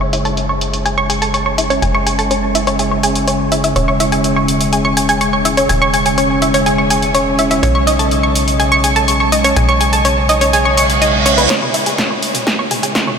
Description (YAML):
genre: melodic techno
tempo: 124 BPM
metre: 4/4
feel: straight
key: C# minor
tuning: A4 = 439 Hz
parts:
  - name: analog pluck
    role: arpeggios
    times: 0.0-13.1 s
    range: B4 to C#6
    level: -14 LUFS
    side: equal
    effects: chorus, sidechain pumping, tape echo
  - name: tight sequencer bass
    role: bass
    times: 0.0-11.5 s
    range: E1 to B1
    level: -20 LUFS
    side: equal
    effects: sidechain pumping
  - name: analog drone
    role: drone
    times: 0.0-13.2 s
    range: C#3 to G#3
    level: -19 LUFS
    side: left 1 dB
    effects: chorus, sidechain pumping
  - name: techno drum kit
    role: drums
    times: 0.1-13.2 s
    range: hi-hat, snare drum, toms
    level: -20 LUFS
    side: equal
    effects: overdrive, sidechain pumping on hats, high-pass filter on hats, low-pass filter on hats, studio reverb, high-pass filter on snare, low-pass filter on snare, sidechain pumping on toms, high-pass filter on toms, low-pass filter on toms
  - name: reverse cymbal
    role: sound effects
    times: 10.7-11.5 s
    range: none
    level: -18 LUFS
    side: right 5 dB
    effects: none
  - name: electronic kick drum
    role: drums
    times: 11.5-13.0 s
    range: none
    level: -24 LUFS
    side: equal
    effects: distortion, overdrive, high-pass filter on kick, studio reverb
room: wet huge ambient reverb, RT60 6.7 s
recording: dreamy mix soaked in reverb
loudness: -11 LUFS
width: side -6 dB against mid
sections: 0.0-11.5 A section; 11.5-13.2 B section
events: filter sweep on synth arpeggio sound 0.0-11.5; reverse cymbal 10.7-11.5; build-up 11.5-13.2; drum fill 11.5-13.2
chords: 0.0 F#m; 3.8 E; 7.6 B; 11.5 C#m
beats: 0.37 0.85 1.34 | 1.82 2.31 2.79 3.27 | 3.76 4.24 4.73 5.21 | 5.69 6.18 6.66 7.14 | 7.63 8.11 8.60 9.08 | 9.56 10.05 10.53 11.02 | 11.50 11.98 12.47 12.95